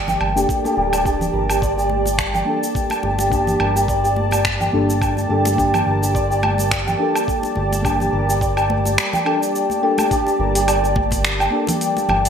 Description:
organic downtempo; 106 BPM; 4/4; swing 56% on 16ths; G minor; A4 = 441 Hz
deep mellow chord stab; accompaniment; 0.0-12.3 s; Bb3 to A5; -24 LUFS; left 2 dB; chorus, phaser, cassette tape, sidechain pumping, digital delay
warm analog pad; sustained chords; 0.0-12.3 s; G3 to A5; -26 LUFS; equal; chorus, sidechain pumping
santur; arpeggios; 0.0-12.3 s; G4 to A5; -20 LUFS; right 1 dB; digital delay
smooth synth bass; bass; 0.0-12.3 s; D1 to G1; -22 LUFS; equal
deep house drum kit; drums; 0.1-12.3 s; cabasa, finger snaps, hi-hat, woodblock; -24 LUFS; right 1 dB; overdrive, gated reverb
congas; percussion; 0.1-12.2 s; -29 LUFS; left 2 dB
electronic kick drum; drums; 0.5-11.2 s; -24 LUFS; equal
wet lush hall reverb, RT60 1.6 s; bright 1980s-style digital production; -16 LUFS; side -7 dB against mid
0.0-10.1 A section; 10.1-12.3 B section
0.0 Gmadd9

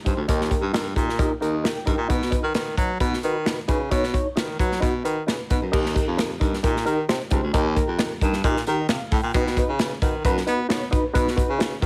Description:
uptempo 1960s-style soul; 132 BPM; 4/4; straight; A4 = 439 Hz
reed electric piano; accompaniment; 0.0-11.9 s; Eb4 to G5; -29 LUFS; equal; overdrive, phaser
breathy baritone saxophone; bass; 0.1-11.9 s; Db2 to B3; -28 LUFS; equal
natural country drum kit; drums; 0.1-11.9 s; crash cymbal, hi-hat, kick drum, snare drum; -26 LUFS; equal
light reverb, small room ambience; heavily compressed radio sound; -23 LUFS; mono
0.0-5.7 A section; 5.7-11.9 B section
reed electric piano fill 1.2-2.1
0.0 Eb; 2.1 B; 5.7 Eb; 9.3 B

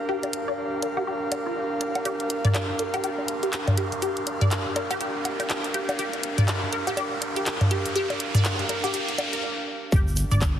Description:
minimal techno; 122 BPM; 4/4; swing 59% on 16ths; G minor; A4 = 436 Hz
riser and sub drop; sound effects; 0.0-10.6 s; -33 LUFS; equal
airy breathy pad; texture; 0.0-10.6 s; D4 to F5; -30 LUFS; right 1 dB; chorus, sidechain pumping
resonant blip pluck; riff; 0.1-10.4 s; F4 to D5; -31 LUFS; left 1 dB; phaser, analog chorus, sidechain pumping, dub echo
garage drum kit; drums; 0.2-10.5 s; handclaps, hi-hat; -30 LUFS; equal
electronic bongos, woodblock and toms; percussion; 0.2-10.5 s; -25 LUFS; equal; digital delay
saturated sub bass; bass; 9.9-10.6 s; G1; -26 LUFS; equal; sidechain pumping
electronic kick drum; drums; 9.9-10.5 s; -22 LUFS; equal
tube shaker; percussion; 9.9-10.5 s; -36 LUFS; right 1 dB
wet digital room reverb, RT60 1.1 s; heavily compressed radio sound, multiband compression; -23 LUFS; side -10 dB against mid
0.0-9.9 A section
build-up 0.0-9.9; riser 0.0-9.4; filter sweep on synth arpeggio sound 0.0-9.9; stop 9.4-9.9; impact 9.9-10.6
0.0 Gm7; 9.9 G5

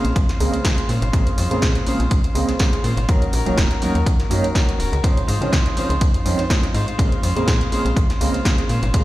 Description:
filtered disco house; 123 BPM; 4/4; swing 54% on 16ths; Bb minor; A4 = 440 Hz
clear baby grand piano; accompaniment; 0.0-9.0 s; Db3 to Db4; -24 LUFS; right 1 dB; phaser, sidechain pumping, low-pass filter
clean electric guitar; riff; 0.0-9.0 s; Ab3 to C5; -27 LUFS; left 1 dB; sidechain pumping, low-pass filter
slap-like FM bass; bass; 0.0-9.0 s; Eb1 to Db3; -21 LUFS; equal; tube saturation, sidechain pumping, low-pass filter
punchy analog drum machine; drums; 0.0-9.0 s; hi-hat, snare drum; -27 LUFS; equal
tambourine; percussion; 0.0-9.0 s; -48 LUFS; right 7 dB
electronic kick drum; drums; 0.2-9.0 s; -19 LUFS; equal
light reverb; played on a big sound system in a bare room, stone room reverb; -16 LUFS; side -16 dB against mid
0.0-9.0 A section
0.0 Bbm9; 3.1 Ebm7; 5.0 Dbmaj9; 7.0 Bbm9

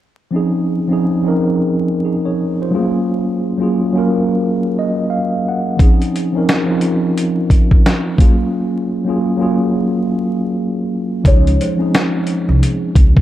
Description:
lo-fi hip hop; 88 BPM; 4/4; swing 62% on 16ths; Db major; A4 = 440 Hz
mellow tine electric piano; accompaniment; 0.3-13.2 s; F3 to Gb5; -15 LUFS; equal; medium stereo tremolo, low-pass filter
dusty soul sampler-style drum kit; drums; 5.8-13.2 s; hi-hat, kick drum, snare drum; -12 LUFS; equal
kalimba; melody; 11.3-13.2 s; C5 to Db5; -24 LUFS; left 2 dB; low-pass filter
upright bass; bass; 11.3-13.2 s; C2 to Db2; -14 LUFS; equal
moderate spring reverb, RT60 2.2 s; dark, warm production, vinyl crackle; -13 LUFS; side -13 dB against mid
0.3-11.2 A section; 11.2-13.2 B section
tine electric piano fill 4.4-5.8; break 8.5-11.2
0.3 Dbmaj9; 2.7 Gbmaj9; 5.8 Dbmaj9; 8.2 Gbmaj9; 11.2 Dbmaj9

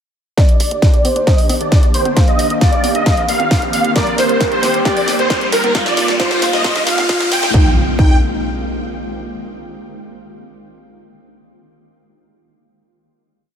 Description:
uplifting trance; 134 BPM; 4/4; straight; Eb major; A4 = 441 Hz
supersaw chords; melody; 0.4-8.2 s; Bb4 to G5; -18 LUFS; right 1 dB; ensemble chorus, cassette tape, sidechain pumping, low-pass filter, ping-pong delay
warm velvety synth lead; second line; 0.4-8.2 s; Eb4 to F5; -21 LUFS; equal; chorus, ping-pong delay
electronic kick drum; drums; 0.4-8.1 s; -14 LUFS; equal; distortion, overdrive
techno drum kit; drums; 0.4-7.5 s; congas, hi-hat, snare drum; -22 LUFS; equal; overdrive, high-pass filter on snare, high-pass filter on hats, high-pass filter on perc
riser and impact; sound effects; 1.9-9.3 s; -22 LUFS; left 1 dB
tight sequencer bass; bass; 0.6-8.2 s; G1 to F2; -28 LUFS; equal
light reverb; high-pass filter; -12 LUFS; side -8 dB against mid
0.4-7.5 build; 7.5-9.3 final chord
build-up 0.4-7.5; drum fill 0.4-7.5; filter sweep on supersaw synth 0.4-7.5; filter sweep 0.4-7.5; riser 1.9-7.5
0.4 Ebmaj7; 2.2 Cm7; 4.0 Gm; 4.9 Cm7; 5.7 Bb7; 6.6 Fm7; 7.5 Ebmaj7

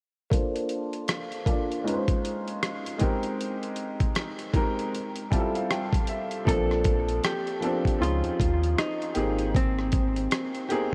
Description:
lo-fi hip hop; 78 BPM; 4/4; swing 61% on 16ths; Bb major; A4 = 440 Hz
warm upright piano; accompaniment; 0.3-10.9 s; F3 to A5; -31 LUFS; equal; cassette tape, low-pass filter
dusty soul sampler-style drum kit; drums; 0.3-10.9 s; hi-hat, kick drum, rim click; -30 LUFS; equal; overdrive
vintage hollow-body jazz guitar; melody; 6.5-10.9 s; C4 to A4; -32 LUFS; equal; delay
warm sub bass; bass; 6.5-10.3 s; Ab1 to Eb2; -31 LUFS; equal
moderate huge ambient reverb, RT60 4.9 s; dreamy mix soaked in reverb; -27 LUFS; mono
0.3-6.5 A section; 6.5-10.9 B section
filter sweep on upright piano 0.3-6.5; upright piano fill 4.9-6.5
0.3 Bbmaj9; 1.9 Dbmaj9; 3.0 Abmaj9; 4.9 Fmaj9; 6.5 Bbmaj9; 8.0 Dbmaj9; 9.2 Abmaj9

